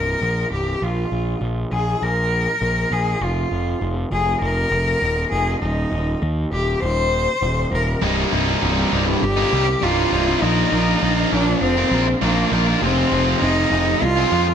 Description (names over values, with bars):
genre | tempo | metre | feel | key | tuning
post-rock | 100 BPM | 4/4 | straight | C minor | A4 = 440 Hz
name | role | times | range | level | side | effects
rich cello | melody | 0.0-14.5 s | G3 to C5 | -21 LUFS | equal | slapback echo
fuzz picked electric bass | bass | 0.0-14.5 s | C1 to F2 | -21 LUFS | equal | overdrive
overdriven electric guitar | riff | 8.0-14.5 s | C2 to Bb4 | -20 LUFS | equal | none
room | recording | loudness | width
moderate recital hall reverb, RT60 1.5 s, small room ambience | big arena sound | -17 LUFS | side -8 dB against mid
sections
0.0-8.0 A section; 8.0-14.5 B section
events
build-up 0.0-8.0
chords
0.0 C7(no3); 0.8 Bb5; 3.2 Ebsus4 (rootless); 5.6 Eb5; 8.0 Cm7; 10.4 Bbsus4; 12.8 Fm7